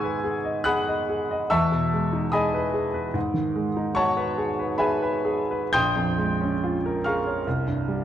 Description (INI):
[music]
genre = classical, impressionist solo piano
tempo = 62-74 BPM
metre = 5/4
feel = rubato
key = unclear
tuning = A4 = 441 Hz
[part]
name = clear baby grand piano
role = solo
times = 0.0-8.0 s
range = A#1 to G#6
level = -22 LUFS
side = equal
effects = none
[sound]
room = moderate concert hall reverb, RT60 1.8 s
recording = dark, warm production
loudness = -22 LUFS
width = side -10 dB against mid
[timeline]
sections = 0.0-8.0 A section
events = none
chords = 0.0 G#m7; 1.5 Emaj7; 3.1 G#m7; 5.7 A#m7; 7.5 C5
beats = 0.65 1.50 2.33 | 3.15 3.97 4.79 5.72 6.61 | 7.46